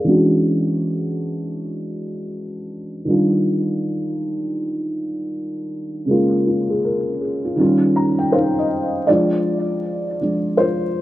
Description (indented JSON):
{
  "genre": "hip hop",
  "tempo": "80 BPM",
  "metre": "4/4",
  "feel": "swing 64% on 16ths",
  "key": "F dorian",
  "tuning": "A4 = 440 Hz",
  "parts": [
    { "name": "felt-muted upright piano", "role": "solo", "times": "0.0-11.0 s", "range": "Db3 to Bb5", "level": "-18 LUFS", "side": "equal", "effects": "low-pass filter, tape echo" }
  ],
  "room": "light reverb",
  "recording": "rough home demo mix, vinyl crackle, low-pass filter",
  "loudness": "-17 LUFS",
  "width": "side -15 dB against mid",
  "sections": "0.0-9.1 A section; 9.1-11.0 B section",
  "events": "filter sweep 0.0-9.1; felt piano fill 7.6-9.1; felt piano solo 9.1-11.0",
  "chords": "0.1 E13; 3.1 Ebmaj9; 6.1 Bbm7; 7.6 Eb9; 9.1 Fm6"
}